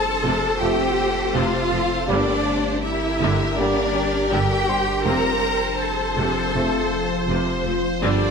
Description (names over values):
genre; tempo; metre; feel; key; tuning
cinematic, hybrid orchestral and electronic film score; 81 BPM; 4/4; straight; unclear; A4 = 440 Hz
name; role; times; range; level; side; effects
warm symphonic violin section; melody; 0.0-8.3 s; Bb4 to C5; -30 LUFS; left 3 dB; none
warm symphonic violin section; second line; 0.0-8.3 s; D5 to Bb5; -27 LUFS; left 2 dB; none
rich symphonic viola section; accompaniment; 0.0-8.3 s; C3 to C5; -27 LUFS; equal; none
deep dark ambient pad; sustained chords; 0.0-8.3 s; F3 to C5; -28 LUFS; equal; chorus, built-in reverb
warm sub bass; bass; 0.0-8.3 s; F1 to G1; -32 LUFS; equal; none
warm symphonic cello section; bass; 0.0-8.3 s; D4 to Bb4; -24 LUFS; equal; none
felt-muted upright piano; texture; 0.0-8.0 s; G4 to C6; -35 LUFS; left 3 dB; none
warm symphonic double bass section; bass; 0.2-8.1 s; F1 to G1; -27 LUFS; right 4 dB; none
clear trombone section; sustained chords; 0.6-8.3 s; C3 to C4; -30 LUFS; right 4 dB; none
mellow French horn section; sustained chords; 0.6-8.3 s; Bb3 to G4; -29 LUFS; left 5 dB; none
room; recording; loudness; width
wet scoring stage reverb, RT60 1.6 s; none; -19 LUFS; side -5 dB against mid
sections
0.0-8.3 A section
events
none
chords
0.0 F; 2.1 Gm; 5.1 F